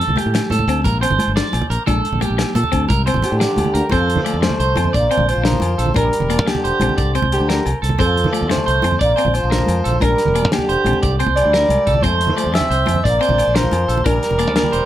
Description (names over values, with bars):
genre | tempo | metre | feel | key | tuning
highlife guitar band | 118 BPM (dotted quarters) | 12/8 | straight | F major | A4 = 440 Hz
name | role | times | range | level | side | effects
electric guitar at the edge of break-up | arpeggios | 0.0-14.9 s | G4 to D5 | -22 LUFS | right 4 dB | spring reverb
modern bright fingered electric bass | bass | 0.0-14.8 s | E1 to F3 | -19 LUFS | equal | none
warm soul drum kit | drums | 0.0-14.8 s | hi-hat, kick drum, snare drum | -23 LUFS | left 1 dB | none
congas | percussion | 0.1-14.7 s | none | -24 LUFS | right 2 dB | none
clean electric guitar | accompaniment | 0.2-14.7 s | A3 to D4 | -25 LUFS | left 8 dB | none
agogo bells | percussion | 0.2-14.7 s | none | -31 LUFS | left 6 dB | none
warm alto saxophone | melody | 3.2-14.9 s | G4 to E5 | -19 LUFS | equal | none
trombone with plunger mute | second line | 3.3-14.9 s | D3 to C4 | -27 LUFS | left 2 dB | none
room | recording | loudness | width
light reverb | none | -14 LUFS | side -12 dB against mid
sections
0.0-3.9 A section; 3.9-14.9 B section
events
none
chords
0.0 F (rootless); 0.9 Bb; 1.9 Gm/Bb; 2.9 Csus2; 3.9 F; 4.9 Bb; 6.0 Gm; 7.0 Csus2; 8.0 F; 9.0 Bb; 10.0 Gm; 11.0 Csus2; 12.0 F; 13.0 Bb; 14.1 Gm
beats
0.34 0.85 1.36 | 1.87 2.38 2.89 3.40 | 3.91 4.42 4.93 5.44 | 5.95 6.46 6.97 7.48 | 7.99 8.49 9.00 9.51 | 10.01 10.52 11.02 11.53 | 12.03 12.54 13.04 13.55 | 14.05 14.56